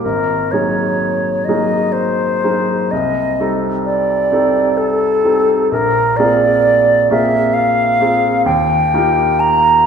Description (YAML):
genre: classical, impressionist duo for flute and grand piano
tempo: 64 BPM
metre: 3/4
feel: rubato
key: unclear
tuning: A4 = 440 Hz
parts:
  - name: silver concert flute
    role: melody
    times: 0.0-9.9 s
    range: A4 to Bb5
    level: -14 LUFS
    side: equal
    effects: none
  - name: clear baby grand piano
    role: accompaniment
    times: 0.0-9.9 s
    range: Ab1 to A4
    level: -17 LUFS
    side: right 1 dB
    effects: none
room: wet recital hall reverb, RT60 1.7 s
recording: heard from further back in the room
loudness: -12 LUFS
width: side -7 dB against mid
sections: 0.0-9.9 A section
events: none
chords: 0.0 Ab9; 2.9 Cm6; 5.7 Bb9; 8.5 Ebadd9